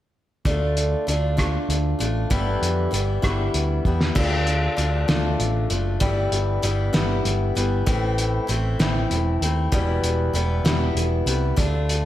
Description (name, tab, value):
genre	folk rock and heartland rock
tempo	65 BPM (dotted quarters)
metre	6/8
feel	straight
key	unclear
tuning	A4 = 440 Hz
part	picked acoustic archtop guitar	accompaniment	0.5-12.1 s	E2 to F4	-24 LUFS	left 2 dB	slapback echo
part	picked electric bass	bass	0.5-12.1 s	E1 to F2	-23 LUFS	right 1 dB	none
part	cloth-damped thuddy drum kit	drums	0.5-12.0 s	crash cymbal, hi-hat, kick drum, rim click, snare drum	-24 LUFS	equal	none
room	moderate lush hall reverb, RT60 1.7 s, small room reverb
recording	big arena sound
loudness	-20 LUFS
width	side -13 dB against mid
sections	0.5-4.2 A section; 4.2-12.1 B section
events	drum fill 3.9-4.2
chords	0.5 Dm; 2.3 G6; 4.2 Dm; 6.0 G6; 7.9 Am; 9.7 Em